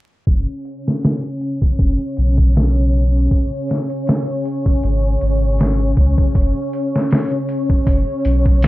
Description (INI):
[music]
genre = trip hop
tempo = 79 BPM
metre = 4/4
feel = swing 55% on 16ths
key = unclear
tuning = A4 = 437 Hz
[part]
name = string machine, cellos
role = sustained chords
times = 0.3-8.7 s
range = C#4 to C#5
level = -21 LUFS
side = left 1 dB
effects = ensemble chorus
[part]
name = warm sub bass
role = bass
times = 0.3-8.7 s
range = F#1 to C#2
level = -16 LUFS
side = equal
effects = tube saturation
[part]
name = trip hop sampler-style drum kit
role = drums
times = 0.3-8.7 s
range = hi-hat, kick drum, snare drum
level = -16 LUFS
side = equal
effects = none
[sound]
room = digital ambience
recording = dry, gritty hardware recording, vinyl crackle, low-pass filter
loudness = -15 LUFS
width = side -17 dB against mid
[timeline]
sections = 0.3-8.7 A section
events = filter sweep on string machine 0.3-8.7; filter sweep 0.3-8.7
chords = 0.3 N.C.; 3.3 G#sus4; 6.3 F#5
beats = | 0.27 1.03 1.79 2.55 | 3.31 4.07 4.83 5.59 | 6.35 7.11 7.87 8.62